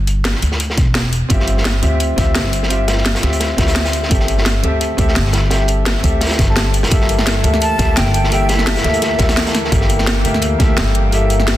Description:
liquid drum and bass; 171 BPM; 4/4; swing 54% on 16ths; G dorian; A4 = 439 Hz
upright bass; bass; 0.0-11.6 s; E1 to D2; -17 LUFS; equal
crunchy breakbeat drum kit; drums; 0.1-11.6 s; hi-hat, snare drum; -22 LUFS; equal; high-pass filter on hats, high-pass filter on snare, high-pass filter on room
drum and bass drum kit; drums; 0.1-11.6 s; hi-hat, snare drum; -20 LUFS; equal; overdrive
electronic kick drum; drums; 0.8-10.7 s; -17 LUFS; equal
clear concert grand piano; accompaniment; 1.3-11.6 s; Bb3 to A5; -20 LUFS; left 1 dB; ping-pong delay
lush unison pad; sustained chords; 6.9-11.6 s; E3 to A4; -24 LUFS; left 1 dB; chorus, sidechain pumping
breathy mellow silver concert flute; melody; 7.6-9.5 s; E5 to A5; -21 LUFS; equal; ping-pong delay
light reverb, small room ambience; dense, heavily limited modern master; -13 LUFS; side -14 dB against mid
0.0-11.6 A section
0.0 G5; 1.3 Dm11/G; 4.1 Am7/G; 6.9 Gm69

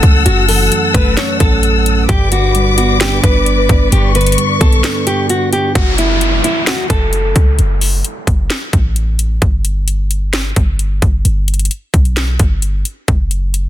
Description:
hip hop, trap; 131 BPM; 4/4; half-time; F# phrygian; A4 = 440 Hz
nylon-string guitar; melody; 0.0-7.5 s; E4 to C#5; -17 LUFS; left 1 dB; low-pass filter, digital delay
soft electric-piano-like synth keys; accompaniment; 0.0-5.8 s; F#2 to D4; -17 LUFS; right 3 dB; chorus, low-pass filter
warm symphonic string section; sustained chords; 0.0-5.7 s; A4 to E6; -17 LUFS; left 4 dB
clean 808-style bass; bass; 0.0-13.7 s; F#1 to C#2; -14 LUFS; equal
trap drum kit; drums; 0.0-13.6 s; hi-hat, kick drum, snare drum; -14 LUFS; equal
downlifter; sound effects; 5.8-9.4 s; -20 LUFS; equal
little or no reverb; dense, heavily limited modern master; -11 LUFS; side -12 dB against mid
0.0-5.8 A section; 5.8-13.7 B section
break 4.8-5.8, 7.6-13.7
0.0 F#m7; 2.1 G; 5.8 F#m; 9.4 G; 13.1 N.C.

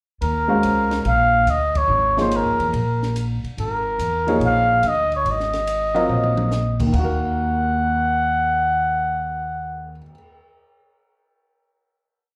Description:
modal jazz; 143 BPM; 4/4; swing 67% on 8ths; Eb dorian; A4 = 441 Hz
trumpet with cup mute; melody; 0.2-10.0 s; Bb4 to Gb5; -22 LUFS; equal; slapback echo
upright bass; bass; 0.2-10.0 s; Ab1 to Fb2; -27 LUFS; equal
compact cocktail drum kit; drums; 0.2-10.2 s; crash cymbal, cymbal swell, hi-hat, kick drum, ride cymbal, snare drum, toms; -34 LUFS; equal
warm baby grand piano; accompaniment; 0.5-10.1 s; Eb2 to F5; -25 LUFS; equal
moderate club reverb, RT60 0.5 s; live gig heard through the venue's PA, club reverb; -20 LUFS; mono
0.2-6.9 A section; 6.9-10.3 final chord
band accent 1.7; drum fill 6.1-6.5
0.2 Eb9sus4; 6.9 Ebm

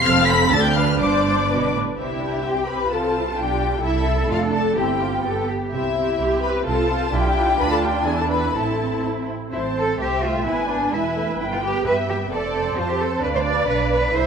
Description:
quick classical-period movement for string orchestra; 128 BPM; 2/4; rubato; C major, A minor from 7.6 s; A4 = 440 Hz
warm symphonic violin section; melody; 0.0-14.3 s; E5 to B6; -25 LUFS; left 4 dB
warm studio violin section; second line; 0.0-14.3 s; E4 to B5; -26 LUFS; left 3 dB
warm symphonic viola section; accompaniment; 0.0-14.3 s; G3 to C5; -24 LUFS; right 2 dB
warm studio cello section; bass; 0.1-14.3 s; D2 to D5; -25 LUFS; right 3 dB
warm studio double bass section; bass; 0.1-14.3 s; E1 to G2; -26 LUFS; right 3 dB
moderate concert hall reverb, RT60 2.2 s; minimal, uncompressed stereo recording; -18 LUFS; side -6 dB against mid
0.0-2.0 A section; 2.0-9.5 B section; 9.5-14.3 A section
0.0 F; 0.5 Dm; 1.0 Gsus4; 1.5 G; 2.0 C; 2.9 F/C; 3.4 G7/B; 3.8 C; 4.3 Dm/F; 4.8 C/G; 5.2 G; 5.7 C; 6.7 F/C; 7.1 G7/B; 7.6 Dm; 8.1 E5; 8.5 Am; 10.5 E/G#; 11.4 Em/G; 12.3 F; 13.2 Bdim/D

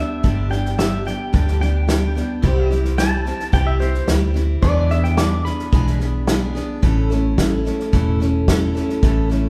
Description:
honky-tonk and classic country; 109 BPM; 4/4; straight; A4 = 440 Hz
pedal steel guitar; second line; 0.0-6.5 s; C5 to D6; -29 LUFS; equal
picked steel-string acoustic guitar; accompaniment; 0.0-9.5 s; G2 to A4; -26 LUFS; equal
vintage muted fingered electric bass; bass; 0.2-9.5 s; E1 to E2; -22 LUFS; equal
natural country drum kit; drums; 0.2-9.4 s; hi-hat, kick drum, snare drum; -23 LUFS; equal
bright upright piano; accompaniment; 2.4-6.8 s; E4 to C5; -35 LUFS; equal
moderate large studio reverb, RT60 1.1 s; band playing live in one room; -19 LUFS; mono
0.0-6.8 A section; 6.8-9.5 B section
pedal steel guitar solo 0.0-6.8
0.0 G; 2.4 C; 4.6 E7; 6.8 A

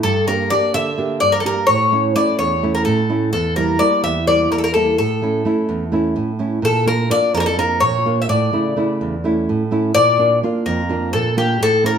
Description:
greek folk, Greek bouzouki band; 254 BPM (eighths); 7/8; straight; A4 = 439 Hz
Greek bouzouki; melody; 0.0-12.0 s; G4 to E5; -17 LUFS; left 2 dB
nylon-string guitar; accompaniment; 0.0-12.0 s; E2 to G4; -18 LUFS; right 2 dB
wet large studio reverb, RT60 0.9 s; band playing live in one room; -15 LUFS; side -8 dB against mid
0.0-9.9 A section; 9.9-12.0 B section
0.0 Gm; 1.7 A; 3.3 Edim; 5.0 A; 6.6 Bb; 8.3 A; 9.9 Bb

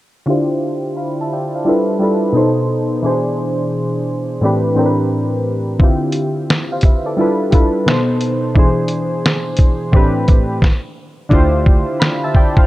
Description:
lo-fi hip hop; 87 BPM; 4/4; swing 64% on 16ths; D dorian; A4 = 440 Hz
warm analog keys; accompaniment; 0.3-12.7 s; A2 to B5; -15 LUFS; equal; chorus, cassette tape, low-pass filter
lo-fi sampler-style drum kit; drums; 5.8-12.7 s; finger snaps, hi-hat, kick drum, snare drum; -12 LUFS; equal
upright bass; bass; 11.3-11.8 s; D2; -17 LUFS; equal
light reverb; cassette tape; -13 LUFS; side -17 dB against mid
0.3-11.3 A section; 11.3-12.7 B section
filter sweep on synth keys 0.3-11.3; stop 10.6-11.3; hi-hats muted 11.3-12.7
0.3 Dm11; 1.7 G13; 2.3 B7b9; 3.0 E7b13; 4.4 Am11; 5.8 Dm11; 7.2 G13; 7.9 B7b9; 8.6 E7b13; 9.9 Am11; 11.3 Dm11

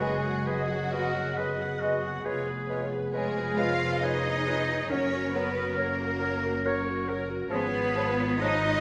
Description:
classical; 68 BPM; 3/4; rubato; F# major; A4 = 440 Hz
warm symphonic violin section; melody; 0.0-8.8 s; F#4 to E#5; -40 LUFS; equal
dark symphonic violin section; second line; 0.0-8.8 s; F#4 to E#5; -38 LUFS; equal
flute section; second line; 0.0-8.5 s; C#5 to D#5; -42 LUFS; equal
warm clarinet; second line; 0.0-8.6 s; G#4 to B4; -40 LUFS; equal
warm oboe; second line; 0.0-8.8 s; F#4 to C#5; -36 LUFS; equal
warm bassoon; accompaniment; 0.0-8.6 s; E#3 to G#3; -41 LUFS; equal
warm symphonic viola section; accompaniment; 0.0-8.8 s; E#4 to F#5; -40 LUFS; equal
dark trombone section; sustained chords; 0.0-7.8 s; E#3 to C#4; -41 LUFS; equal
warm French horn section; sustained chords; 0.0-7.8 s; F#4 to D#5; -40 LUFS; equal
rich symphonic cello section; bass; 0.0-8.8 s; F#3 to E#4; -34 LUFS; equal
warm studio double bass section; bass; 0.0-8.8 s; E#1 to G#1; -37 LUFS; equal
timpani; percussion; 4.9-6.2 s; F#2; -50 LUFS; equal
moderate scoring stage reverb, RT60 1.8 s; -29 LUFS; mono
0.0-8.8 A section
0.0 G#m7/F#; 2.3 C#7/E#; 4.9 F#; 7.5 C#7/G#

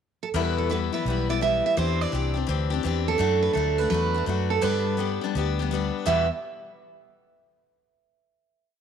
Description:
country; 168 BPM; 4/4; swing 66% on 8ths; E minor; A4 = 440 Hz
picked steel-string acoustic guitar; melody; 0.2-6.3 s; A4 to E5; -26 LUFS; right 7 dB
picked steel-string acoustic guitar; accompaniment; 0.3-6.3 s; E2 to G4; -27 LUFS; left 11 dB
vintage muted fingered electric bass; bass; 0.3-6.3 s; B1 to G2; -27 LUFS; equal
moderate echo chamber reverb, RT60 1.9 s, small room ambience; 1960s-style stereo with parts hard left and right; -22 LUFS; side -8 dB against mid
0.0-0.3 pickup bar; 0.3-6.1 verse; 6.1-7.5 final chord
0.3 Em; 1.8 Cadd9; 3.2 D; 4.6 G; 6.1 Em

